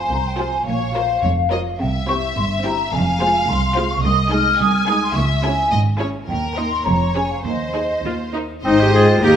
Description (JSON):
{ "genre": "quick classical-period movement for symphony orchestra", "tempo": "106 BPM", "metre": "2/4", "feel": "rubato", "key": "F minor, Ab major from 4.0 s", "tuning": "A4 = 440 Hz", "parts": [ { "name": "rich studio violin section", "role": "melody", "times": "0.0-9.4 s", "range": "Bb4 to Ab5", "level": "-26 LUFS", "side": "left 3 dB", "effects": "none" }, { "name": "mellow hollow flute section", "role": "second line", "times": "0.0-9.4 s", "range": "Eb5 to F6", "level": "-21 LUFS", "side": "left 1 dB", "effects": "none" }, { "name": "rich studio violin section", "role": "second line", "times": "0.0-9.4 s", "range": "F4 to Ab5", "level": "-27 LUFS", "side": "left 4 dB", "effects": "none" }, { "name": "warm studio viola section", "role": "accompaniment", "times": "0.0-9.4 s", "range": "F3 to Ab4", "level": "-26 LUFS", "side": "right 1 dB", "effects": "none" }, { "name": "dark studio double bass section", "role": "bass", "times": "0.1-9.4 s", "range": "F1 to Eb2", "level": "-24 LUFS", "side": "right 2 dB", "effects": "none" }, { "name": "rich studio cello section", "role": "bass", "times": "0.1-9.4 s", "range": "C2 to C3", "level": "-23 LUFS", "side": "right 2 dB", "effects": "none" }, { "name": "clear clarinet", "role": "second line", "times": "8.6-9.4 s", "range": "C4 to F4", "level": "-22 LUFS", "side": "equal", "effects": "none" }, { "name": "warm bassoon", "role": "accompaniment", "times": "8.6-9.4 s", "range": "Bb3 to C4", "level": "-23 LUFS", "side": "left 1 dB", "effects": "none" }, { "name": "clear oboe", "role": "second line", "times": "8.7-9.4 s", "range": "Eb4 to Ab4", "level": "-21 LUFS", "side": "right 1 dB", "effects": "none" }, { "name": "dark French horn section", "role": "sustained chords", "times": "8.7-9.4 s", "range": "Eb4 to Ab4", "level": "-14 LUFS", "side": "left 2 dB", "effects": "none" } ], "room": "wet recital hall reverb, RT60 1.6 s", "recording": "none", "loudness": "-16 LUFS", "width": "side -9 dB against mid", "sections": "0.0-8.6 A section", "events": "none", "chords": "0.0 Fm; 0.7 Bbm; 1.8 C; 2.9 Fm; 4.0 Ab/C; 5.2 Dbm; 6.3 Eb; 6.9 Db/F; 7.5 Ab/Eb; 8.1 Eb5; 8.6 Ab" }